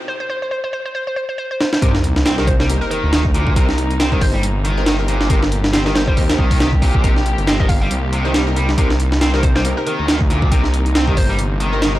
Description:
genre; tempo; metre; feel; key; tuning
breakbeat, breaks; 138 BPM; 4/4; swing 57% on 16ths; C minor; A4 = 440 Hz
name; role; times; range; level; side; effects
warm studio string section; sustained chords; 0.0-12.0 s; C3 to G4; -27 LUFS; left 1 dB; sidechain pumping
hollow square pluck; melody; 0.1-11.8 s; Bb4 to F5; -26 LUFS; equal; chorus, old record sound, analog delay
breakbeat sampler-style drum kit; drums; 1.6-11.9 s; hi-hat, kick drum, snare drum; -17 LUFS; equal; none
overdriven electric guitar; riff; 1.8-11.9 s; Bb2 to C4; -24 LUFS; equal; analog delay
orchestra-hit-like synth stab; stabs; 1.8-12.0 s; C4 to C5; -26 LUFS; left 1 dB; built-in reverb, analog delay
detuned saw bass; bass; 1.8-12.0 s; G1 to Eb2; -18 LUFS; equal; none
sub drop; sound effects; 1.8-3.6 s; none; -24 LUFS; equal; none
room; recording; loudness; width
light reverb; dry, gritty hardware recording, transformer saturation, vinyl crackle; -14 LUFS; side -15 dB against mid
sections
0.0-1.8 A section; 1.8-12.0 B section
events
build-up 0.0-1.8; filter sweep on drum 0.0-1.8; break 0.1-1.8; drum fill 1.6; drop 1.8-12.0; impact 1.8-3.6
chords
0.0 N.C.; 1.8 Cm7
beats
| 0.08 0.52 0.95 1.39 | 1.82 2.26 2.69 3.13 | 3.56 4.00 4.43 4.87 | 5.30 5.74 6.17 6.60 | 7.04 7.47 7.91 8.34 | 8.78 9.21 9.65 10.08 | 10.52 10.95 11.39 11.82

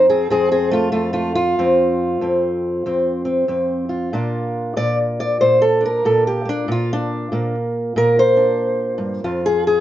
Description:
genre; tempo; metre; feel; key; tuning
acoustic country blues, solo or duo; 94 BPM; 4/4; swing 61% on 8ths; F major; A4 = 441 Hz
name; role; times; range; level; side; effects
fingerpicked old ladder-braced acoustic guitar; solo; 0.0-9.8 s; F2 to D5; -16 LUFS; equal; none
room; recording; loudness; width
moderate studio reverb, RT60 0.6 s; nothing above 7.8 kHz; -16 LUFS; side -12 dB against mid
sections
0.0-9.8 A section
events
steel-string acoustic guitar solo 0.0-9.8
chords
0.0 F; 4.1 Bb; 9.2 F5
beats
0.30 0.94 | 1.58 2.21 2.85 3.49 | 4.13 4.76 5.40 6.04 | 6.68 7.31 7.95 8.59 | 9.22

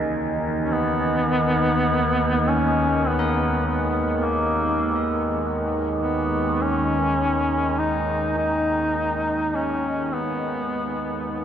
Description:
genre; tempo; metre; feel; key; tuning
dark ambient drone; 51 BPM; 4/4; straight; unclear; A4 = 440 Hz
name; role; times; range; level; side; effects
deep dark ambient pad; sustained chords; 0.0-11.4 s; Eb3 to Ab5; -26 LUFS; equal; chorus, built-in reverb
carillon bells; arpeggios; 0.0-10.2 s; Db3 to Bb4; -36 LUFS; left 2 dB; none
overtone-sweeping drone; drone; 0.0-11.4 s; Eb2; -26 LUFS; right 1 dB; chorus, built-in reverb, phaser
warm duduk; melody; 0.7-11.4 s; Bb3 to Eb4; -23 LUFS; equal; tape echo
room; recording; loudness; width
wet cathedral reverb, RT60 6.6 s; none; -20 LUFS; side -9 dB against mid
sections
0.0-11.4 A section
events
fade-out 7.0-11.4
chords
0.0 Eb5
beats
| 0.72 1.89 3.07 4.25 | 5.42 6.60 7.78 8.95 | 10.13 11.30

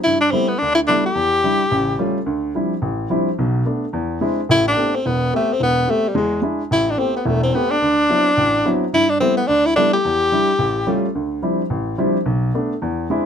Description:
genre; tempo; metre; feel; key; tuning
jazz; 216 BPM; 4/4; swing 61% on 8ths; A minor; A4 = 440 Hz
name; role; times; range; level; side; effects
breathy tenor saxophone; melody; 0.0-2.1, 4.5-11.0 s; G3 to G4; -16 LUFS; left 1 dB; none
warm baby grand piano; accompaniment; 0.1-13.3 s; E1 to G4; -19 LUFS; equal; none
room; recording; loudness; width
light reverb; close, detailed microphones; -16 LUFS; side -8 dB against mid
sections
0.0-6.7 A section; 6.7-13.3 A section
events
none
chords
0.0 G69; 1.2 Em7; 1.7 Aaug7; 2.3 Dm11; 3.4 Bm7; 3.9 Eaug7; 4.5 Am9; 6.1 E7; 6.7 Am9; 7.8 D13; 8.9 G69; 10.0 Em7; 10.6 Aaug7; 11.1 Dm11; 12.3 Bm7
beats
| 0.04 0.32 0.60 0.88 | 1.15 1.43 1.71 1.99 | 2.26 2.54 2.82 3.10 | 3.37 3.65 3.93 4.21 | 4.48 4.76 5.04 5.32 | 5.59 5.87 6.15 6.43 | 6.70 6.98 7.26 7.54 | 7.81 8.09 8.37 8.65 | 8.92 9.20 9.48 9.76 | 10.03 10.31 10.59 10.87 | 11.14 11.42 11.70 11.98 | 12.25 12.53 12.81 13.09

